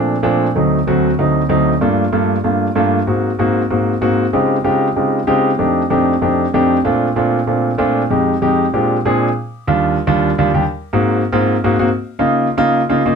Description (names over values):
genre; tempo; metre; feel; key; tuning
jazz; 191 BPM; 4/4; straight; Bb major, Eb major from 9.4 s; A4 = 439 Hz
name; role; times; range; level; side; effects
warm grand piano; solo; 0.0-13.1 s; D2 to Ab4; -13 LUFS; equal; none
room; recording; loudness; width
light reverb; close, detailed microphones; -13 LUFS; side -6 dB against mid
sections
0.0-9.4 A section; 9.4-13.2 B section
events
none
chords
0.0 Bbmaj9; 0.6 D7b9; 1.8 Gm9; 3.1 Ab7; 4.3 Dbmaj9#11; 5.6 F13; 6.9 Bbmaj9; 8.1 Fm7; 8.7 Bb13; 9.4 Ebmaj7; 10.6 Ab7; 11.9 Db6